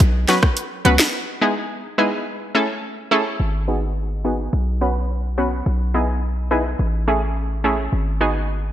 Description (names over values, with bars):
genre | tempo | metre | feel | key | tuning
dancehall | 106 BPM | 4/4 | straight | E major | A4 = 439 Hz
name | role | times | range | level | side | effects
warm 808-style bass | bass | 0.0-8.7 s | G#1 to C#2 | -21 LUFS | equal | none
island pop drum kit | drums | 0.0-1.1 s | hi-hat, kick drum, rim click, snare drum | -18 LUFS | equal | none
analog pluck | accompaniment | 0.3-8.3 s | F#3 to B4 | -21 LUFS | equal | chorus, low-pass filter
room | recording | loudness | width
moderate lush hall reverb, RT60 1.8 s, digital ambience | bright 1980s-style digital production | -18 LUFS | side -12 dB against mid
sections
0.0-3.4 A section; 3.4-8.7 B section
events
break 1.1-3.4; filter sweep on synth pluck 3.4-8.7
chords
0.0 Bsus2; 1.1 Emaj7; 2.3 Amaj7; 3.4 G#m7; 4.5 Bsus2; 5.7 Emaj7/B; 6.8 Amaj7; 7.9 G#m7